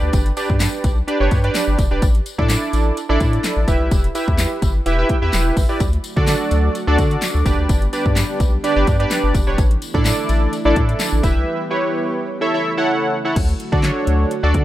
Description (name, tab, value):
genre	dance-pop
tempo	127 BPM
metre	4/4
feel	straight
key	D major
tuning	A4 = 440 Hz
part	warm analog keys	accompaniment	0.0-14.6 s	D4 to G5	-20 LUFS	right 2 dB	chorus, sidechain pumping
part	round analog bass	bass	0.0-14.6 s	E1 to D3	-19 LUFS	equal	sidechain pumping
part	pop drum kit	drums	0.1-14.6 s	crash cymbal, handclaps, hi-hat, kick drum, snare drum	-19 LUFS	equal	overdrive
part	tambourine	percussion	0.1-11.4 s	none	-31 LUFS	left 7 dB	none
part	airy breathy pad	sustained chords	5.8-14.6 s	C#3 to G4	-28 LUFS	right 1 dB	chorus, sidechain pumping
room	little or no reverb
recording	rough home demo mix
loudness	-15 LUFS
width	side -14 dB against mid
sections	0.0-13.4 A section; 13.4-14.6 A section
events	drop 0.0-13.4, 13.4-14.6; synth keys fill 4.9-5.8; break 11.5-13.4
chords	0.0 G; 2.0 Asus4; 3.7 Em; 5.8 D; 7.5 G; 9.6 Asus4; 11.2 Em; 12.4 A; 13.4 D